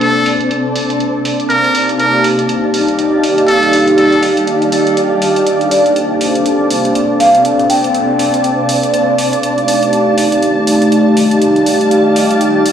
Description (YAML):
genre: deep house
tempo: 121 BPM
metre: 4/4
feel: swing 59% on 16ths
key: unclear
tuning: A4 = 436 Hz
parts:
  - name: trumpet with metal mute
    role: melody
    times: 0.0-4.3 s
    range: A4 to Bb4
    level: -16 LUFS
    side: equal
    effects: analog delay
  - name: hollow soft pad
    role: sustained chords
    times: 0.0-12.7 s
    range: A3 to F5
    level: -14 LUFS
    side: equal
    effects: chorus
  - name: electronic hi-hat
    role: drums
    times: 0.0-12.7 s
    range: none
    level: -22 LUFS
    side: right 2 dB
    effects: low-pass filter on hats, low-pass filter on room
  - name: granular cloud pad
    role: texture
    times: 0.0-12.7 s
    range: C4 to A5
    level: -14 LUFS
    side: right 1 dB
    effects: built-in reverb
  - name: soft string machine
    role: texture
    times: 6.0-12.7 s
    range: A5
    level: -24 LUFS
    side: left 1 dB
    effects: ensemble chorus
  - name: vibraphone with medium mallets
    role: melody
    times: 5.7-8.4 s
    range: D5 to G5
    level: -14 LUFS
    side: equal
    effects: vintage 12-bit sampler grit, tape echo
room: wet lush hall reverb, RT60 2.2 s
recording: played on a big sound system in a bare room, stone room reverb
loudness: -10 LUFS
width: side -9 dB against mid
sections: 0.0-12.7 A section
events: none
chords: 0.0 Bbmaj9; 1.5 Ebmaj9#11; 5.5 Bbmaj9; 9.4 Ebmaj9#11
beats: 0.01 0.51 1.00 | 1.50 2.00 2.49 2.99 | 3.48 3.98 4.47 4.97 | 5.47 5.96 6.46 6.95 | 7.45 7.95 8.44 8.94 | 9.43 9.93 10.43 10.92 | 11.42 11.91 12.41